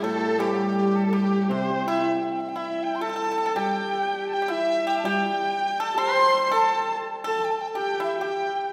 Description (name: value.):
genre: chinese traditional, Chinese chamber ensemble.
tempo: 81 BPM.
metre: 2/4.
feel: rubato.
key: unclear.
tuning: A4 = 444 Hz.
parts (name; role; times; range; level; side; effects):
large dizi; melody; 0.0-8.7 s; G4 to C6; -29 LUFS; equal; none.
clear erhu; second line; 0.0-8.7 s; G4 to C6; -32 LUFS; equal; none.
dark horsehead fiddle; second line; 0.0-8.7 s; G3 to C5; -30 LUFS; equal; none.
pipa; second line; 0.0-8.7 s; C3 to C5; -33 LUFS; equal; none.
hammered dulcimer; accompaniment; 0.0-7.2 s; A2 to G3; -35 LUFS; equal; none.
room: wet concert hall reverb, RT60 2.1 s.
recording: recorded in a church or concert hall.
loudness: -24 LUFS.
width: mono.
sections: 0.0-3.0 A section; 3.0-8.7 B section.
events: none.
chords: none.